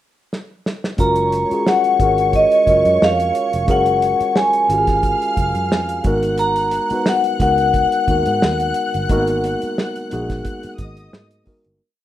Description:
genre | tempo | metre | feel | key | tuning
lush 1970s-style soul | 89 BPM | 4/4 | swing 54% on 16ths | F# major | A4 = 440 Hz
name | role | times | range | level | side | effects
cloth-damped thuddy drum kit | drums | 0.3-11.8 s | hi-hat, kick drum, snare drum | -21 LUFS | right 1 dB | none
vibraphone with hard mallets | melody | 1.0-11.1 s | D#5 to A#5 | -17 LUFS | left 1 dB | plate reverb
dark studio string section | second line | 1.0-11.4 s | C#5 to F#6 | -29 LUFS | right 1 dB | plate reverb
tine electric piano | accompaniment | 1.0-11.8 s | G#3 to B4 | -21 LUFS | equal | plate reverb
fingered electric bass | bass | 1.0-11.8 s | E#1 to G#2 | -24 LUFS | right 1 dB | none
room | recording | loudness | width
wet studio reverb, RT60 0.6 s | rough home demo mix | -15 LUFS | side -12 dB against mid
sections
0.0-1.0 pickup bar; 1.0-11.8 verse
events
drum fill 0.3-1.0; fade-out 9.1-11.8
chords
0.0 N.C.; 1.0 F#maj9; 6.0 G#m9

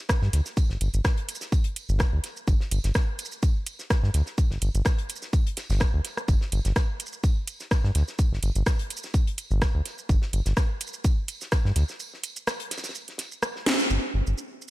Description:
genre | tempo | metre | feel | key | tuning
minimal techno | 126 BPM | 4/4 | swing 54% on 16ths | unclear | A4 = 442 Hz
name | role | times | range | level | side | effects
damped 70s drum kit | drums | 0.1-13.9 s | hi-hat, snare drum, tambourine | -40 LUFS | equal | sidechain pumping on hats, high-pass filter on hats, high-pass filter on snare, sidechain pumping on perc, high-pass filter on perc, high-pass filter on room
electronic kick drum | drums | 0.1-11.6 s | none | -23 LUFS | equal | none
house drum kit | drums | 0.1-14.7 s | hi-hat, rim click, shaker, snare drum | -30 LUFS | equal | none
round analog bass | bass | 0.2-14.3 s | G1 to G2 | -23 LUFS | equal | sidechain pumping
room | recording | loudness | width
little or no reverb | none | -23 LUFS | side -17 dB against mid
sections
0.0-13.9 A section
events
break 12.0-13.9; drum fill 13.7; band accent 13.7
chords
none

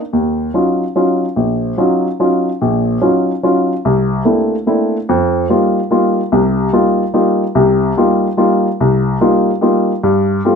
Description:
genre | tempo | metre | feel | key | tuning
jazz | 145 BPM | 3/4 | swing 67% on 8ths | unclear | A4 = 440 Hz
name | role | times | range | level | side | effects
dark baby grand piano | solo | 0.1-10.6 s | Bb1 to F4 | -12 LUFS | left 1 dB | none
room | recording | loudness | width
moderate club reverb, RT60 0.5 s | none | -12 LUFS | side -6 dB against mid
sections
0.0-5.1 A section; 5.1-10.6 B section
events
none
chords
0.1 Ebm9; 3.8 C13; 5.1 F9sus4; 10.0 G9sus4

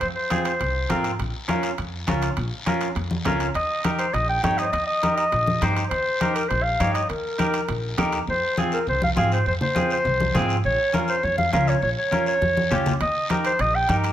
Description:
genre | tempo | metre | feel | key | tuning
latin, cumbia | 203 BPM | 4/4 | straight | F minor | A4 = 439 Hz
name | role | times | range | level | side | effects
clear clarinet | melody | 0.0-1.0, 3.6-14.0 s | Bb4 to G5 | -23 LUFS | equal | none
upright bass | bass | 0.0-14.1 s | Bb1 to Ab2 | -26 LUFS | equal | none
guiro | percussion | 0.0-14.1 s | none | -37 LUFS | left 4 dB | none
timbales | percussion | 0.0-8.3, 13.0-14.1 s | none | -34 LUFS | right 6 dB | none
clean electric guitar | accompaniment | 0.3-14.1 s | C4 to Db5 | -27 LUFS | equal | none
congas | percussion | 0.3-14.0 s | none | -28 LUFS | left 1 dB | none
room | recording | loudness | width
moderate large studio reverb, RT60 1.1 s | none | -20 LUFS | side -11 dB against mid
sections
0.0-8.3 A section; 8.3-14.1 A section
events
drum fill 12.4-13.0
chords
0.0 Fm; 1.2 Bbm; 3.6 Eb; 8.3 Fm; 10.6 Bbm; 13.0 Eb

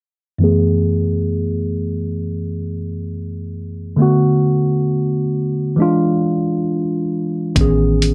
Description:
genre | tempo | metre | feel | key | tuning
R&B, neo-soul | 67 BPM | 4/4 | swing 58% on 16ths | F# minor | A4 = 440 Hz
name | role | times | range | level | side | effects
tine electric piano | accompaniment | 0.4-8.1 s | F#2 to G#4 | -18 LUFS | equal | low-pass filter
deep dub fingered electric bass | bass | 7.6-8.1 s | A1 | -19 LUFS | equal | none
dusty soul sampler-style drum kit | drums | 7.6-8.1 s | hi-hat, kick drum | -20 LUFS | equal | none
room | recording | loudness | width
light reverb | none | -18 LUFS | mono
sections
0.4-8.1 A section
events
filter sweep on tine electric piano 0.4-8.1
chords
0.4 F#m11; 4.0 Bm7; 5.8 E7b9; 7.6 Amaj9#11

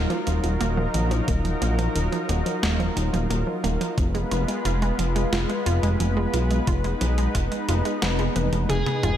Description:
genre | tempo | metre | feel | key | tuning
synthwave | 89 BPM | 4/4 | straight | unclear | A4 = 436 Hz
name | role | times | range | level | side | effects
lush unison pad | sustained chords | 0.0-9.2 s | Gb3 to Cb5 | -27 LUFS | left 1 dB | chorus, sidechain pumping
wide unison pluck | arpeggios | 0.0-9.1 s | Eb3 to Cb5 | -30 LUFS | right 3 dB | ping-pong delay
fat analog bass | bass | 0.0-9.2 s | Eb1 to Cb2 | -24 LUFS | equal | none
clean 12-bit digital drum machine | drums | 0.1-9.2 s | hi-hat, snare drum, toms | -30 LUFS | equal | none
electronic kick drum | drums | 1.3-7.5 s | none | -25 LUFS | equal | overdrive
bluesy overdriven lead guitar | melody | 8.7-9.2 s | Ab4 | -26 LUFS | equal | distortion
room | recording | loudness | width
light reverb, digital ambience | none | -21 LUFS | side -10 dB against mid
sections
0.0-9.2 A section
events
drum fill 8.4-9.2; kick drops out 8.7-9.2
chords
0.0 Ebmadd9; 4.0 Fdim

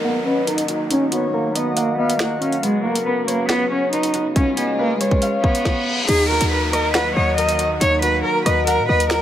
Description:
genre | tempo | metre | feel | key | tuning
hip hop, drill | 139 BPM | 4/4 | half-time | Eb minor | A4 = 436 Hz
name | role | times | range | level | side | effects
warm cello | melody | 0.0-9.2 s | Ab3 to Eb5 | -20 LUFS | right 2 dB | low-pass filter, tape echo
breathy flute-like synth lead | second line | 0.0-5.8 s | Bb4 to Gb5 | -25 LUFS | left 2 dB | chorus, tape echo
concert harp | accompaniment | 0.0-9.2 s | B3 to Gb5 | -24 LUFS | left 4 dB | low-pass filter
rich studio string section | sustained chords | 0.0-9.2 s | C#3 to Gb4 | -28 LUFS | equal | low-pass filter
downlifter and reverse cymbal | sound effects | 0.0-9.2 s | none | -29 LUFS | equal | none
drill drum kit | drums | 0.5-9.2 s | crash cymbal, finger snaps, hi-hat, kick drum, rim click, snare drum | -23 LUFS | equal | none
short 808-style bass | bass | 6.1-9.2 s | Eb2 to Bb2 | -22 LUFS | equal | none
room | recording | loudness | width
light reverb | none | -16 LUFS | side -11 dB against mid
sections
0.0-6.1 A section; 6.1-9.2 B section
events
filter sweep 0.0-6.1; reverse cymbal 5.4-6.1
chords
0.0 Ebm; 2.6 Bsus2; 4.4 Db7; 6.1 Ebm

